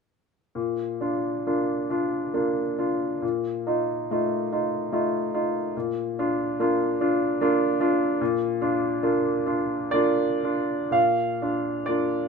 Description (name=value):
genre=classical, romantic nocturne for solo piano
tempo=55-75 BPM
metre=3/4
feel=rubato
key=Bb major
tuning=A4 = 435 Hz
part: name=clear concert grand piano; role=solo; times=0.6-12.3 s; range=Bb2 to F5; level=-23 LUFS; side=equal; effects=none
room=moderate studio reverb, RT60 0.6 s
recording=minimal, uncompressed stereo recording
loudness=-23 LUFS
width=side -5 dB against mid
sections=0.6-11.0 A section; 11.0-12.3 B section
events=none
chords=0.6 Bb; 3.2 F7/Bb; 5.7 Bb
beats=| 0.56 1.46 2.34 | 3.23 4.10 4.91 | 5.75 6.58 7.40 | 8.21 9.04 9.94 | 10.96 11.89